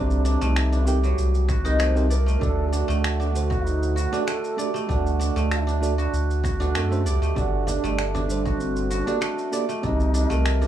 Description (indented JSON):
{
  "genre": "organic downtempo",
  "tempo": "97 BPM",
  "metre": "4/4",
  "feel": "straight",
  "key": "D phrygian dominant",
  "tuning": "A4 = 440 Hz",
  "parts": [
    { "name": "mellow bass bansuri", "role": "melody", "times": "0.0-10.7 s", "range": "C4 to C5", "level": "-30 LUFS", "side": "right 4 dB", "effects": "analog delay" },
    { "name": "bell-like tine electric piano", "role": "accompaniment", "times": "0.0-10.7 s", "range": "D3 to Bb5", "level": "-28 LUFS", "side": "right 4 dB", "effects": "vintage 12-bit sampler grit, sidechain pumping, analog delay" },
    { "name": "guzheng", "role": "arpeggios", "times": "0.0-10.7 s", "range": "F#3 to D5", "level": "-29 LUFS", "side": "left 1 dB", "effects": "analog delay" },
    { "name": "warm sub bass", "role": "bass", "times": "0.0-10.7 s", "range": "G1 to F#2", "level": "-23 LUFS", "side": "equal", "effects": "tube saturation" },
    { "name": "electronic shaker and finger snaps", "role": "drums", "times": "0.1-10.7 s", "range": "none", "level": "-33 LUFS", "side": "equal", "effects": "overdrive" },
    { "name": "electronic kick drum", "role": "drums", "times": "1.5-10.0 s", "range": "none", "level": "-28 LUFS", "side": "equal", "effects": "overdrive" },
    { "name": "frame drum", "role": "percussion", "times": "7.7-10.7 s", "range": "none", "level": "-34 LUFS", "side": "right 3 dB", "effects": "none" }
  ],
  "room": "small room ambience",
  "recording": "dry, gritty hardware recording",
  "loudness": "-21 LUFS",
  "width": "side -11 dB against mid",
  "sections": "0.0-10.7 A section",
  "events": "none",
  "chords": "0.0 Cm7; 2.4 D; 7.4 Gsus2; 9.8 Cm7"
}